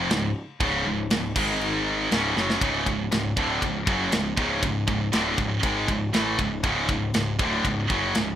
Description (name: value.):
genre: heavy metal.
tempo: 119 BPM.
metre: 4/4.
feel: straight.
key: unclear.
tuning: A4 = 440 Hz.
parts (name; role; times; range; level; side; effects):
heavy high-gain guitar; riff; 0.0-8.4 s; C#2 to A3; -26 LUFS; right 6 dB; distortion.
scooped high-gain guitar; riff; 0.0-8.4 s; C#2 to A3; -27 LUFS; left 6 dB; distortion.
fuzz picked electric bass; bass; 0.0-8.4 s; C#1 to A1; -32 LUFS; equal; overdrive.
tight metal drum kit; drums; 0.1-8.3 s; crash cymbal, kick drum, ride cymbal, snare drum; -28 LUFS; equal; none.
room: moderate studio reverb, RT60 0.6 s.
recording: rough home demo mix.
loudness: -22 LUFS.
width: side -10 dB against mid.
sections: 0.0-2.6 A section; 2.6-8.4 B section.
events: drum fill 2.4.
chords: 0.0 C#; 1.4 G#5; 2.1 C#5.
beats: 0.10 | 0.60 1.11 1.61 2.11 | 2.62 3.12 3.62 4.13 | 4.63 5.13 5.64 6.14 | 6.64 7.15 7.65 8.16.